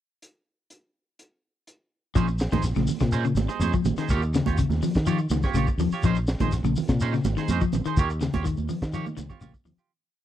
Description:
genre	afrobeat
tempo	124 BPM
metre	4/4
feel	straight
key	Bb dorian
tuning	A4 = 440 Hz
part	crunchy breakbeat drum kit	drums	0.2-9.8 s	hi-hat, kick drum, snare drum	-28 LUFS	equal	none
part	electric guitar at the edge of break-up	arpeggios	2.2-9.8 s	C3 to F3	-28 LUFS	left 7 dB	none
part	clean electric guitar	stabs	2.2-9.9 s	Bb3 to Db5	-31 LUFS	right 8 dB	lush chorus
part	fingered electric bass	bass	2.2-9.8 s	Ab1 to Eb3	-27 LUFS	equal	none
part	congas	percussion	2.2-9.8 s	none	-30 LUFS	right 8 dB	none
part	shekere	percussion	2.2-9.9 s	none	-33 LUFS	left 1 dB	none
room	small room ambience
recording	dry, close 1970s-style studio recording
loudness	-22 LUFS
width	side -12 dB against mid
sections	0.2-2.2 pickup bar; 2.2-9.9 groove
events	fade-out 8.0-9.9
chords	0.2 N.C.; 2.2 Bbm11; 4.1 Eb9; 6.0 Bbm11; 8.0 Eb9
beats	| 0.22 0.70 1.19 1.67 | 2.16 2.64 3.13 3.61 | 4.10 4.58 5.07 5.55 | 6.04 6.52 7.00 7.49 | 7.97 8.45 8.93 9.41

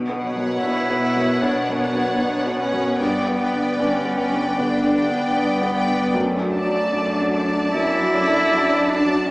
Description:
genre	cinematic, emotional film score for orchestra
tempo	76 BPM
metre	4/4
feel	rubato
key	unclear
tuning	A4 = 440 Hz
part	felt-muted upright piano	accompaniment	0.0-9.3 s	B1 to D4	-24 LUFS	equal	none
part	concert harp	arpeggios	0.0-9.3 s	F#2 to D5	-29 LUFS	equal	none
part	rich symphonic cello section	bass	0.0-9.2 s	F#2 to B2	-26 LUFS	equal	none
part	clear studio violin section	melody	0.2-9.3 s	F#5 to A5	-28 LUFS	left 1 dB	none
part	warm symphonic violin section	second line	0.2-9.3 s	C#5 to D5	-28 LUFS	equal	none
part	rich symphonic viola section	accompaniment	0.2-9.3 s	B4 to D5	-28 LUFS	equal	none
part	rich cello	melody	0.6-9.3 s	A3 to E4	-23 LUFS	equal	none
room	wet scoring stage reverb, RT60 1.6 s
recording	heard from further back in the room, small speaker sound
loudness	-18 LUFS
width	side -23 dB against mid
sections	0.0-9.3 A section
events	none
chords	0.0 Bmadd9; 3.0 G; 6.1 D/F#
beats	0.62 1.42 2.21 | 3.00 3.80 4.58 5.36 | 6.15 6.93 7.75 8.53 | 9.30

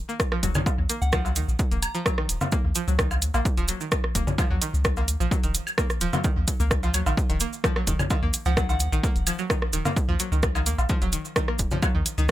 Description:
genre	minimal techno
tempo	129 BPM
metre	4/4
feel	straight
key	Eb minor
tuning	A4 = 439 Hz
part	string-like resonator pluck	riff	0.1-12.3 s	Eb3 to Bb3	-31 LUFS	equal	chorus, sidechain pumping, digital delay
part	cabasa	percussion	0.1-12.3 s	none	-33 LUFS	right 4 dB	none
part	electronic kick drum	drums	0.2-12.3 s	none	-25 LUFS	equal	overdrive
part	punchy analog drum machine	drums	0.2-12.3 s	hi-hat, rim click	-26 LUFS	right 1 dB	overdrive
part	punchy sub bass	bass	0.4-12.3 s	Eb1 to Eb2	-26 LUFS	equal	sidechain pumping
part	congas and woodblock	percussion	0.6-11.9 s	none	-29 LUFS	left 1 dB	overdrive, tape echo
part	soft synth bell	melody	1.0-2.0, 8.5-9.2 s	Gb5 to Bb5	-35 LUFS	equal	chorus, tape echo
room	little or no reverb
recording	none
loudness	-22 LUFS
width	side -14 dB against mid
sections	0.0-12.3 A section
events	none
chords	0.0 Eb5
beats	0.20 0.66 1.13 | 1.59 2.06 2.52 2.99 | 3.45 3.92 4.38 4.85 | 5.31 5.78 6.24 6.71 | 7.17 7.64 8.11 8.57 | 9.04 9.50 9.96 10.43 | 10.89 11.36 11.82 12.29

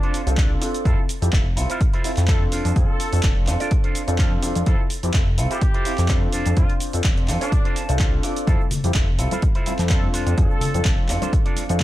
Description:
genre	filtered disco house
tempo	126 BPM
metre	4/4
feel	swing 54% on 16ths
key	unclear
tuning	A4 = 439 Hz
part	warm trumpet section	melody	0.0-11.0 s	D4 to A4	-32 LUFS	right 1 dB	vintage 12-bit sampler grit, sidechain pumping, ping-pong delay
part	dark grand piano	accompaniment	0.0-11.8 s	C4 to C5	-27 LUFS	left 1 dB	phaser, sidechain pumping
part	electric guitar with an envelope filter	riff	0.0-11.8 s	D4 to A5	-32 LUFS	right 2 dB	spring reverb, sidechain pumping
part	punchy analog drum machine	drums	0.0-11.8 s	handclaps, hi-hat, shaker	-30 LUFS	right 1 dB	sidechain pumping on hats, sidechain pumping on perc
part	fat analog bass	bass	0.3-11.8 s	F1 to F2	-22 LUFS	equal	sidechain pumping
part	electronic kick drum	drums	0.4-11.8 s	none	-20 LUFS	equal	none
part	congas and tube shaker	percussion	8.5-11.8 s	none	-31 LUFS	left 3 dB	sidechain pumping on perc
room	small room reverb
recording	dark, warm production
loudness	-18 LUFS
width	side -15 dB against mid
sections	0.0-11.8 A section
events	clean electric guitar fill 4.0-4.7, 7.5-8.5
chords	0.0 Dm7; 0.9 Fmaj7; 2.5 Dm7/F; 4.7 Fmaj7; 6.3 Dm7/F; 8.5 Fmaj7; 10.1 Dm7/F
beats	0.38 | 0.85 1.33 1.81 2.28 | 2.76 3.24 3.71 4.19 | 4.67 5.14 5.62 6.09 | 6.57 7.05 7.52 8.00 | 8.47 8.95 9.43 9.90 | 10.38 10.86 11.33 11.81

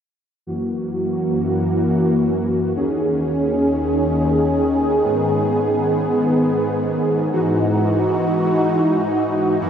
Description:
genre	synthwave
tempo	free time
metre	none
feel	none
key	unclear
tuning	A4 = 443 Hz
part	soft supersaw	sustained chords	0.5-9.7 s	D#2 to G#4	-16 LUFS	equal	low-pass filter
room	wet huge ambient reverb, RT60 9.1 s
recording	dreamy mix soaked in reverb, nothing above 10.6 kHz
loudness	-16 LUFS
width	side -8 dB against mid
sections	0.5-9.6 A section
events	filter sweep on supersaw synth 0.5-9.6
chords	0.5 F#7; 2.8 D#7sus4; 5.0 G#m; 7.3 Emaj7/G#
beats	free time

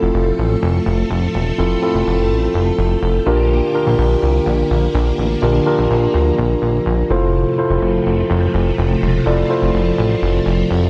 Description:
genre	pop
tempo	125 BPM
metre	4/4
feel	straight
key	F major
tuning	A4 = 444 Hz
part	mellow tine electric piano	accompaniment	0.0-10.9 s	C4 to D5	-20 LUFS	equal	none
part	string machine, full ensemble	sustained chords	0.0-10.9 s	C3 to A4	-24 LUFS	equal	phaser, ensemble chorus
part	chorused synth bass	bass	0.0-10.9 s	E1 to D2	-20 LUFS	equal	none
room	light reverb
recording	none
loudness	-16 LUFS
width	mono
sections	0.0-10.9 A section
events	none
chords	0.0 Fmaj7; 3.3 Bb6; 7.1 Fmaj7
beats	0.14 0.62 1.10 | 1.58 2.06 2.54 3.02 | 3.50 3.98 4.46 4.94 | 5.42 5.90 6.38 6.86 | 7.34 7.82 8.30 8.78 | 9.26 9.74 10.22 10.70

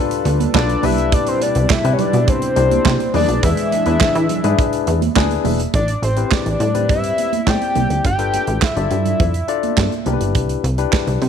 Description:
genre	early-eighties boogie funk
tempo	104 BPM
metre	4/4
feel	straight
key	A minor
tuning	A4 = 440 Hz
part	barky tine electric piano	accompaniment	0.0-11.2 s	C4 to G#5	-22 LUFS	left 14 dB	overdrive
part	warm analog pad	sustained chords	0.0-5.7 s	B2 to B4	-25 LUFS	equal	chorus
part	modern studio drum kit	drums	0.1-11.3 s	handclaps, hi-hat, kick drum, snare drum	-20 LUFS	right 3 dB	none
part	plucky analog bass	bass	0.3-11.3 s	E1 to E3	-19 LUFS	equal	none
part	congas	percussion	0.3-11.3 s	none	-25 LUFS	right 14 dB	none
part	fat analog lead	melody	0.6-10.1 s	C5 to G5	-21 LUFS	left 2 dB	none
room	light reverb, small room ambience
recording	1960s-style stereo with parts hard left and right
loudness	-14 LUFS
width	side -8 dB against mid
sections	0.0-5.7 A section; 5.7-11.3 B section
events	tine electric piano fill 4.9-5.7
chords	0.0 G9; 0.8 Cmaj7; 3.1 E7; 5.7 Am7; 8.0 G9; 10.1 Cmaj7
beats	0.55 | 1.12 1.70 2.28 2.85 | 3.43 4.01 4.58 5.16 | 5.74 6.32 6.89 7.47 | 8.05 8.62 9.20 9.78 | 10.35 10.93

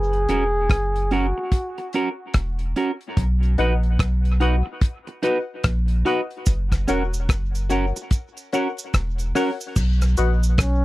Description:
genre	dub reggae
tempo	73 BPM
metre	4/4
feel	swing 61% on 16ths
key	B major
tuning	A4 = 440 Hz
part	breathy flugelhorn	melody	0.0-1.9, 10.6-10.8 s	C#4 to G#4	-25 LUFS	equal	dub echo
part	warm sub bass	bass	0.0-10.8 s	E1 to B1	-20 LUFS	equal	none
part	damped 70s drum kit	drums	0.1-10.8 s	crash cymbal, hi-hat, kick drum, rim click	-21 LUFS	equal	none
part	clean electric guitar	accompaniment	0.3-9.5 s	C#4 to B4	-25 LUFS	right 3 dB	dub echo
part	filtered dub chord stab	stabs	3.6-10.4 s	F#4 to F#5	-27 LUFS	left 6 dB	phaser, dub echo
part	cabasa	percussion	6.5-10.8 s	none	-35 LUFS	right 4 dB	dub echo
room	little or no reverb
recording	dry, close 1970s-style studio recording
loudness	-19 LUFS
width	side -18 dB against mid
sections	0.0-9.8 A section; 9.8-10.8 B section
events	break 0.0-6.5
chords	0.0 F#; 3.2 B; 6.5 F#; 9.8 B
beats	0.70 1.52 2.35 | 3.17 3.99 4.82 5.64 | 6.47 7.29 8.11 8.94 | 9.76 10.58

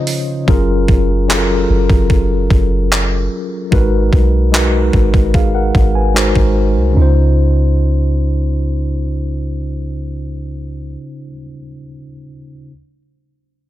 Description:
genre	contemporary R&B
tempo	74 BPM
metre	4/4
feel	straight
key	Db major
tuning	A4 = 440 Hz
part	mellow tine electric piano	accompaniment	0.0-12.7 s	Db3 to Ab5	-18 LUFS	left 1 dB	medium stereo tremolo
part	chorused pulse-width pad	sustained chords	0.0-0.5 s	Db3 to Eb4	-30 LUFS	left 1 dB	sidechain pumping
part	detuned 8-bit digital drum machine	drums	0.1-6.5 s	handclaps, hi-hat, kick drum	-14 LUFS	equal	none
part	soft 808-style bass	bass	0.5-11.0 s	Gb1 to Db2	-15 LUFS	equal	none
room	little or no reverb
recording	none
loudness	-12 LUFS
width	side -14 dB against mid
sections	0.5-7.0 A section; 7.0-10.2 B section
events	break 0.0-0.5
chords	0.5 Gbmaj9; 3.7 Abm9; 6.2 Ab7; 7.0 Dbmaj7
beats	| 0.48 1.29 2.10 2.91 | 3.72 4.53 5.34 6.15 | 6.96 7.78 8.59 9.40

